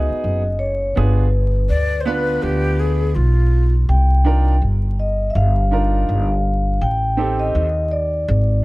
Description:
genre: hip hop, jazz-hop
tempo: 82 BPM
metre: 4/4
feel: swing 60% on 16ths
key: unclear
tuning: A4 = 441 Hz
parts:
  - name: vibraphone with soft mallets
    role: melody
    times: 0.0-8.6 s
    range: B4 to G5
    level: -23 LUFS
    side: left 1 dB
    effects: none
  - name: clear upright piano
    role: accompaniment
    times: 0.0-7.6 s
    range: B3 to B4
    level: -25 LUFS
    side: right 4 dB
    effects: none
  - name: upright bass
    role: bass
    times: 0.0-8.6 s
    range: F#1 to Eb2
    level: -17 LUFS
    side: equal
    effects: none
  - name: breathy mellow jazz flute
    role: second line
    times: 1.7-3.7 s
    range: F4 to D5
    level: -23 LUFS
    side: left 2 dB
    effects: none
room: studio reverb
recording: vinyl crackle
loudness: -15 LUFS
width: side -20 dB against mid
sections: 0.0-8.6 A section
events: none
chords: 0.0 Emaj9 (rootless); 1.0 G7; 3.9 Cm11; 6.8 Am7b5

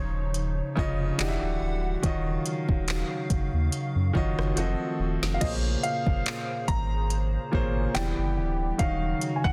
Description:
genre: contemporary R&B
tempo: 71 BPM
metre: 4/4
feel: swing 54% on 16ths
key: Eb dorian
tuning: A4 = 440 Hz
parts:
  - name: warm baby grand piano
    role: melody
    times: 0.0-9.5 s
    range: Db5 to Bb5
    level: -36 LUFS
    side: equal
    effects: delay
  - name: clear baby grand piano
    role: accompaniment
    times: 0.0-9.5 s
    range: Bb2 to E5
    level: -33 LUFS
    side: equal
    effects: none
  - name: hollow soft pad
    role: sustained chords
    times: 0.0-9.5 s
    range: Db3 to F#5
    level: -38 LUFS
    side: equal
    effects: ensemble chorus, sidechain pumping
  - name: warm sub bass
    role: bass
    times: 0.0-9.5 s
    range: D1 to Gb2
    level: -31 LUFS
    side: equal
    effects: none
  - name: smooth R&B drum kit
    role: drums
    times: 0.3-9.5 s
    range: crash cymbal, handclaps, hi-hat, kick drum, rim click, snare drum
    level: -32 LUFS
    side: equal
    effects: none
room: digital ambience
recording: dense, heavily limited modern master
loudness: -27 LUFS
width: mono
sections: 0.0-5.4 A section; 5.4-9.5 A section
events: drum fill 4.6-5.4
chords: 0.0 Dbmaj9; 1.2 Em9; 2.0 Ebm9; 4.6 F7b9; 5.4 Bbm9; 8.0 Em9; 8.8 Ebm7

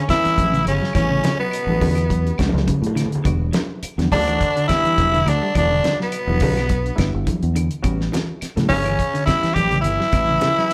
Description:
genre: afrobeat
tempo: 105 BPM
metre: 4/4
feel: swing 54% on 16ths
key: unclear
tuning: A4 = 440 Hz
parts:
  - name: raspy tenor saxophone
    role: melody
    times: 0.0-10.7 s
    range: B3 to G4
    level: -22 LUFS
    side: equal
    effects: none
  - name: clear trumpet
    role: second line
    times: 0.0-10.7 s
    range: B3 to G4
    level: -34 LUFS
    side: equal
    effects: none
  - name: growling bass trombone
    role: second line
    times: 0.0-10.7 s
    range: B2 to G3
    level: -33 LUFS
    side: equal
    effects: none
  - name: barky reed electric piano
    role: accompaniment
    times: 0.0-10.5 s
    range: G3 to A4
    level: -33 LUFS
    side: equal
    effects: none
  - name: semi-hollow electric guitar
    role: arpeggios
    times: 0.0-10.7 s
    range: C#3 to G3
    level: -28 LUFS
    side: equal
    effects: phaser
  - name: damped 70s drum kit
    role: drums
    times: 0.1-10.7 s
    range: hi-hat, kick drum, snare drum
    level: -26 LUFS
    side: equal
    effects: none
  - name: claves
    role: percussion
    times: 0.1-10.7 s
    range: none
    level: -41 LUFS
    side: equal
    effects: none
  - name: fingered electric bass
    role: bass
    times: 0.3-10.4 s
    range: E1 to A2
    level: -24 LUFS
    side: equal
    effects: none
  - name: congas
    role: percussion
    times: 0.4-10.6 s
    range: none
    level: -29 LUFS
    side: equal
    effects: none
room: moderate stone room reverb, RT60 1.2 s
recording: band playing live in one room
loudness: -19 LUFS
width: mono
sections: 0.0-10.7 A section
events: drum fill 2.4-3.3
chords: 0.0 A13; 3.3 Em9; 7.8 A13

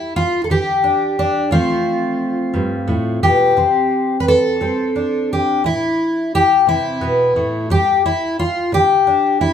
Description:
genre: folk, solo fingerstyle acoustic guitar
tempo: 58 BPM (dotted quarters)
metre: 6/8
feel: straight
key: C major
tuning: A4 = 439 Hz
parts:
  - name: fingerpicked twelve-string acoustic guitar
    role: solo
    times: 0.0-9.5 s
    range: G2 to B4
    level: -14 LUFS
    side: left 1 dB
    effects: none
room: wet studio reverb, RT60 0.6 s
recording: heard from further back in the room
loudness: -14 LUFS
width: side -8 dB against mid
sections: 0.0-9.5 A section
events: none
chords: 0.0 G5; 1.5 F/A; 3.6 Csus2; 5.6 Am; 7.7 G5

